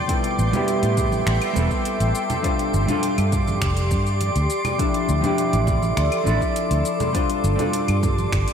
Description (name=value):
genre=sunset chillout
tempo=102 BPM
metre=4/4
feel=straight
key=D dorian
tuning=A4 = 441 Hz
part: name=hollow-body jazz guitar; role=accompaniment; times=0.0-8.5 s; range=F3 to C5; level=-24 LUFS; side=moving between left 6 dB and right 5 dB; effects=auto-pan, low-pass filter, digital delay
part: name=shimmering ambient pad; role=sustained chords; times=0.0-8.5 s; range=G4 to C6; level=-26 LUFS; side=left 1 dB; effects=chorus, built-in reverb
part: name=drifting glass-harmonics texture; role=texture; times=0.0-8.5 s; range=D6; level=-32 LUFS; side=right 2 dB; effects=chorus, built-in reverb
part: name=deep house drum kit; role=drums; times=0.1-8.5 s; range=claves, finger snaps, hi-hat, shaker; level=-32 LUFS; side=left 1 dB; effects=overdrive, studio reverb
part: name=electronic kick drum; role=drums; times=0.1-8.4 s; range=none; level=-26 LUFS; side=equal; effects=overdrive, studio reverb
part: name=vintage muted fingered electric bass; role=bass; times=0.4-8.4 s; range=E1 to A2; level=-21 LUFS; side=equal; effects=none
part: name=congas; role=percussion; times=0.5-8.3 s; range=none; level=-30 LUFS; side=right 3 dB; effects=none
room=moderate lush hall reverb, RT60 2.8 s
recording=bright 1980s-style digital production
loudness=-18 LUFS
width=side -7 dB against mid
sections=0.0-8.5 A section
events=none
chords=0.1 Am7; 2.4 G7sus4; 4.8 Dm7; 7.2 G7sus4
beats=| 0.09 0.68 1.27 1.85 | 2.44 3.03 3.62 4.21 | 4.80 5.38 5.97 6.56 | 7.15 7.74 8.33